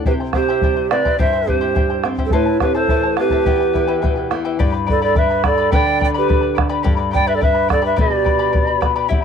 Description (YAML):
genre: andean folk, Andean ensemble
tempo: 106 BPM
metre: 2/4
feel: straight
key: unclear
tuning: A4 = 439 Hz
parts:
  - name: charango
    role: accompaniment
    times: 0.0-9.2 s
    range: E4 to B5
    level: -23 LUFS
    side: left 8 dB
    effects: none
  - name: flamenco guitar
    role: accompaniment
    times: 0.0-9.2 s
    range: E2 to C4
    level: -23 LUFS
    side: left 2 dB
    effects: none
  - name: bright reedy polished pan flute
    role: melody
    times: 0.1-8.8 s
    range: B4 to G5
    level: -20 LUFS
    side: left 2 dB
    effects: none
  - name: breathy large quena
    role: second line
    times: 0.1-8.8 s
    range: E4 to D5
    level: -21 LUFS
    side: right 12 dB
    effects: none
  - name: bombo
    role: percussion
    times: 0.1-9.2 s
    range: none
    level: -19 LUFS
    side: equal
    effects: none
room: small room ambience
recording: dry, close 1970s-style studio recording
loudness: -14 LUFS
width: side -7 dB against mid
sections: 0.0-4.6 A section; 4.6-9.2 B section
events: none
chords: 0.1 C; 2.3 Am; 3.5 Em; 4.6 G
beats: | 0.06 0.63 | 1.19 1.76 | 2.33 2.89 | 3.46 4.03 | 4.59 5.16 | 5.72 6.29 | 6.85 7.41 | 7.98 8.54 | 9.10